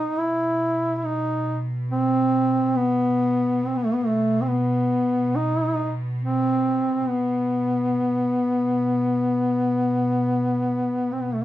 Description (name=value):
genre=caucasian folk, Caucasian lament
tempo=69 BPM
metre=4/4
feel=rubato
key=unclear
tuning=A4 = 440 Hz
part: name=mellow duduk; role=melody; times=0.0-11.4 s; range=A3 to E4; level=-21 LUFS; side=equal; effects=none
part: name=warm symphonic cello section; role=drone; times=0.0-11.4 s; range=B2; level=-29 LUFS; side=right 1 dB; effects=none
room=moderate studio reverb, RT60 0.5 s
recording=band playing live in one room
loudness=-20 LUFS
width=side -13 dB against mid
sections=0.0-11.4 A section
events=none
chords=none